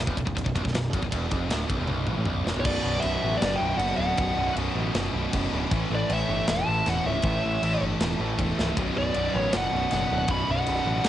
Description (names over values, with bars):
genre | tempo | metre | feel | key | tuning
heavy metal | 157 BPM | 4/4 | straight | B minor | A4 = 440 Hz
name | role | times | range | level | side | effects
heavy high-gain guitar | riff | 0.0-11.1 s | B1 to A3 | -34 LUFS | left 8 dB | distortion, cassette tape
heavy high-gain guitar | riff | 0.0-11.1 s | B1 to A3 | -32 LUFS | right 9 dB | distortion, cassette tape
growling picked electric bass | bass | 0.0-11.1 s | B0 to A1 | -30 LUFS | equal | overdrive
tight metal drum kit | drums | 0.1-11.1 s | crash cymbal, kick drum, ride cymbal, snare drum, toms | -30 LUFS | left 1 dB | cassette tape
high-gain lead guitar | melody | 2.6-11.1 s | C#5 to B5 | -28 LUFS | equal | distortion, cassette tape, analog delay
high-gain lead guitar | second line | 2.6-11.1 s | A4 to F#5 | -39 LUFS | right 8 dB | distortion, cassette tape
thick fuzz guitar | riff | 2.7-11.1 s | B1 to A3 | -31 LUFS | left 1 dB | distortion, cassette tape
room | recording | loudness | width
little or no reverb | home recording on cassette, nothing above 10.5 kHz | -23 LUFS | side -12 dB against mid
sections
0.0-2.7 A section; 2.7-11.1 B section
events
drum fill 1.9-2.7, 8.6; half time 2.7-11.1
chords
0.0 Bm; 5.7 A; 8.8 Bm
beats
0.35 0.74 | 1.12 1.50 1.89 2.27 | 2.65 3.04 3.42 3.80 | 4.18 4.57 4.95 5.33 | 5.71 6.09 6.48 6.86 | 7.24 7.62 8.00 8.38 | 8.77 9.15 9.53 9.91 | 10.29 10.68 11.06